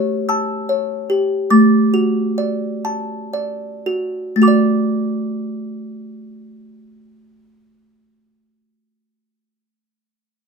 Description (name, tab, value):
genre	children's music, lullaby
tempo	34-52 BPM (dotted quarters)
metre	6/8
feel	straight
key	D major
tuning	A4 = 440 Hz
part	music box	solo	0.0-9.4 s	A3 to F#6	-16 LUFS	equal	none
room	moderate small room reverb, RT60 0.5 s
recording	minimal, uncompressed stereo recording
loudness	-16 LUFS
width	side -5 dB against mid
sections	0.0-4.4 A section; 4.4-7.9 B section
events	slowing down 0.0-4.4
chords	0.0 A7; 1.5 D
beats	0.29 | 1.50 2.85 | 4.42 6.16